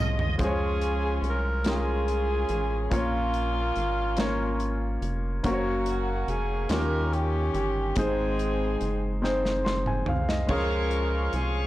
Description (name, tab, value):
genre	slow gospel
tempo	48 BPM (dotted quarters)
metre	6/8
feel	straight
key	Db major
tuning	A4 = 440 Hz
part	warm grand piano	accompaniment	0.0-11.7 s	Ab2 to C6	-30 LUFS	left 1 dB	none
part	bright tonewheel organ	sustained chords	0.0-0.4, 10.5-11.7 s	Ab4 to Db6	-34 LUFS	right 1 dB	slow rotary speaker
part	rubbery square bass	bass	0.0-11.7 s	F1 to Eb2	-29 LUFS	equal	transformer saturation
part	modern studio drum kit	drums	0.2-11.5 s	crash cymbal, hi-hat, kick drum, snare drum, toms	-32 LUFS	equal	none
part	warm saxophone section	melody	0.4-11.7 s	Bb3 to Bb4	-29 LUFS	equal	none
room	light reverb, studio ambience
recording	blown-out, overdriven recording, overdrive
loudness	-24 LUFS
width	side -15 dB against mid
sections	0.4-11.7 A section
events	drum fill 0.0-0.4, 9.2-10.5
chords	0.4 Db; 2.9 Bbm; 5.4 Gb; 6.7 Eb9; 8.0 Ab; 10.5 Db